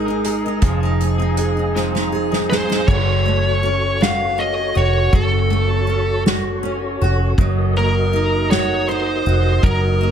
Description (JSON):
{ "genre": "six-eight pop ballad", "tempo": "53 BPM (dotted quarters)", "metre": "6/8", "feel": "straight", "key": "unclear", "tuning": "A4 = 441 Hz", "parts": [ { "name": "picked steel-string acoustic guitar", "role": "accompaniment", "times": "0.0-10.1 s", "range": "F3 to Ab4", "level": "-22 LUFS", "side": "right 2 dB", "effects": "double-tracked left and right" }, { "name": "mellow tonewheel organ", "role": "sustained chords", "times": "0.0-10.1 s", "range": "Gb4 to Eb6", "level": "-27 LUFS", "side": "equal", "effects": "chorus vibrato, fast rotary speaker" }, { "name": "direct-recorded clean electric guitar", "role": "arpeggios", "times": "0.0-2.9 s", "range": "F3 to Bb4", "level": "-29 LUFS", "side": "left 6 dB", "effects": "spring reverb" }, { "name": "vintage muted fingered electric bass", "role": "bass", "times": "0.0-10.1 s", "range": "F1 to Ab1", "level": "-20 LUFS", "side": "equal", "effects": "none" }, { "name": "soft-mallet drum kit", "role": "drums", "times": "0.2-10.1 s", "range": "crash cymbal, hi-hat, kick drum, ride cymbal, snare drum", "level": "-22 LUFS", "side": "equal", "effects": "none" }, { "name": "high-gain lead guitar", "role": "melody", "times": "2.5-10.1 s", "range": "A4 to F5", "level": "-21 LUFS", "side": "equal", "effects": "distortion" } ], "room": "light reverb, small room reverb", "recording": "none", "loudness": "-15 LUFS", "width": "side -8 dB against mid", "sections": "0.0-2.9 A section; 2.9-10.1 B section", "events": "drum fill 1.8-2.9", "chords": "0.0 Absus2; 0.6 Fm7; 2.9 Gbm; 7.4 Ebm" }